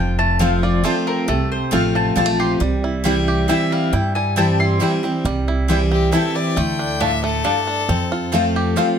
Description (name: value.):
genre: bluegrass.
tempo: 136 BPM.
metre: 3/4.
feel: straight.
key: C major.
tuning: A4 = 441 Hz.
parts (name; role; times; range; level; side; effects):
bluegrass banjo; melody; 0.0-9.0 s; F3 to G4; -26 LUFS; right 4 dB; none.
mandolin; melody; 0.0-5.1 s; A4 to C6; -23 LUFS; left 2 dB; none.
picked steel-string acoustic guitar; accompaniment; 0.0-9.0 s; F2 to F4; -20 LUFS; left 1 dB; none.
upright bass; bass; 0.0-8.7 s; F1 to G2; -22 LUFS; right 1 dB; none.
mandolin; stabs; 0.4-8.9 s; A3 to A5; -23 LUFS; left 1 dB; none.
rich fiddle; second line; 5.9-8.5 s; G4 to G5; -24 LUFS; left 6 dB; none.
room: little or no reverb.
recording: close, detailed microphones.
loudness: -16 LUFS.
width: side -8 dB against mid.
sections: 0.0-5.2 A section; 5.2-9.0 B section.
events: fiddle solo 5.2-9.0.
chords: 0.0 F; 2.6 C; 6.6 Dm; 7.9 F.